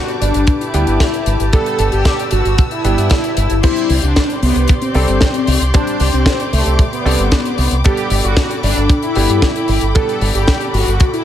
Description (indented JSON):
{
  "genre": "italo disco",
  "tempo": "114 BPM",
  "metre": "4/4",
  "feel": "straight",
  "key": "unclear",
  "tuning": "A4 = 440 Hz",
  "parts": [
    { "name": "mellow synth brass", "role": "melody", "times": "0.0-11.2 s", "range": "A3 to A4", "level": "-18 LUFS", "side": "left 1 dB", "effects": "chorus, phaser, digital delay" },
    { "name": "warm chamber string section", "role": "sustained chords", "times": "0.0-11.2 s", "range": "G4 to E6", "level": "-23 LUFS", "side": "left 1 dB", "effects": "none" },
    { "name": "clear grand piano", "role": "stabs", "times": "0.0-11.2 s", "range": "G3 to C5", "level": "-24 LUFS", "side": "right 2 dB", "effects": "none" },
    { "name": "tight funk drum kit", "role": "drums", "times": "0.1-11.2 s", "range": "crash cymbal, hi-hat, snare drum", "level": "-21 LUFS", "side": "left 2 dB", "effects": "high-pass filter on hats, high-pass filter on cymbals, high-pass filter on snare, high-pass filter on room, gated reverb" },
    { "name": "fingered electric bass with an envelope filter", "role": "bass", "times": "0.2-11.0 s", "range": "G1 to G2", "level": "-16 LUFS", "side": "equal", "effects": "none" },
    { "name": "kick drum", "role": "drums", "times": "0.5-11.1 s", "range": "none", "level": "-14 LUFS", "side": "equal", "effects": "none" }
  ],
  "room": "light reverb, small room ambience",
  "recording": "none",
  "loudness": "-12 LUFS",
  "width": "side -11 dB against mid",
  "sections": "0.0-3.6 A section; 3.6-11.2 B section",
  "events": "none",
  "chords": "0.0 Gadd9; 3.6 Csus2; 7.8 Gadd9"
}